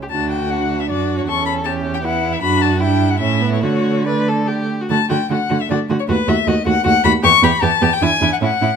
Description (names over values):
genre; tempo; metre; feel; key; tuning
quick classical-period movement for string quartet; 138-160 BPM; 3/4; rubato; D major; A4 = 440 Hz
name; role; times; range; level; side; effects
warm violin; second line; 0.0-8.7 s; E4 to B4; -23 LUFS; left 2 dB; none
warm violin; melody; 0.1-8.8 s; B4 to C#6; -18 LUFS; left 8 dB; none
dark viola; accompaniment; 0.1-8.7 s; A3 to D4; -21 LUFS; right 4 dB; none
dark cello; bass; 0.1-8.7 s; D2 to D3; -20 LUFS; right 5 dB; none
room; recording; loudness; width
moderate stone room reverb, RT60 1.3 s; none; -14 LUFS; side -6 dB against mid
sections
0.0-4.9 A section; 4.9-8.8 B section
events
none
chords
0.1 D; 1.3 C#dim/E; 2.4 D/F#; 2.8 Em7/G; 3.2 A; 3.6 D; 6.1 D#dim; 7.2 Em; 8.0 E7